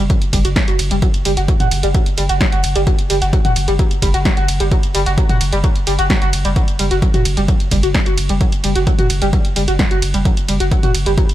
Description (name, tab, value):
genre	driving peak-time techno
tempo	130 BPM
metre	4/4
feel	straight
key	unclear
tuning	A4 = 443 Hz
part	saturated sub bass	bass	0.0-11.2 s	F#1	-19 LUFS	equal	overdrive, sidechain pumping, low-pass filter
part	overdriven synth lead	riff	0.1-11.2 s	F#3 to F#4	-20 LUFS	equal	tube saturation, wide subtle chorus, sidechain pumping, dub echo
part	electronic kick drum	drums	0.1-11.3 s	none	-16 LUFS	equal	none
part	punchy analog drum machine	drums	0.1-11.3 s	hi-hat, ride cymbal, snare drum, toms	-22 LUFS	right 1 dB	sidechain pumping on hats, sidechain pumping on toms, sidechain pumping on cymbals
room	digital ambience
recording	none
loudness	-13 LUFS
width	side -14 dB against mid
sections	0.0-11.3 A section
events	none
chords	none